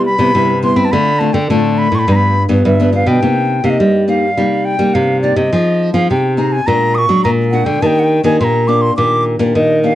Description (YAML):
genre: samba and choro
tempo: 104 BPM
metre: 4/4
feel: straight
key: C minor from 3.2 s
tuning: A4 = 441 Hz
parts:
  - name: bright wooden flute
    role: melody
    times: 0.0-9.9 s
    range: D5 to Eb6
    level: -16 LUFS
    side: equal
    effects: none
  - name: nylon-string guitar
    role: accompaniment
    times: 0.0-9.9 s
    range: G2 to Ab4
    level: -17 LUFS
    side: left 2 dB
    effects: none
  - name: nylon-string guitar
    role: bass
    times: 0.0-9.9 s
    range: G2 to C4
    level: -14 LUFS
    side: right 1 dB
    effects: none
room: light reverb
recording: dark, warm production, nothing above 10.9 kHz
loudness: -11 LUFS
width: side -13 dB against mid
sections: 0.0-3.2 A section; 3.2-9.9 B section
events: none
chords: 0.0 Cmaj7; 0.9 Dm7; 2.1 G7; 3.2 Cm7; 5.5 Fm7; 6.7 Bbaug7; 7.8 Ebmaj7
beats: 0.35 | 0.92 1.50 2.07 2.65 | 3.23 3.80 4.38 4.95 | 5.53 6.10 6.68 7.25 | 7.83 8.41 8.98 9.56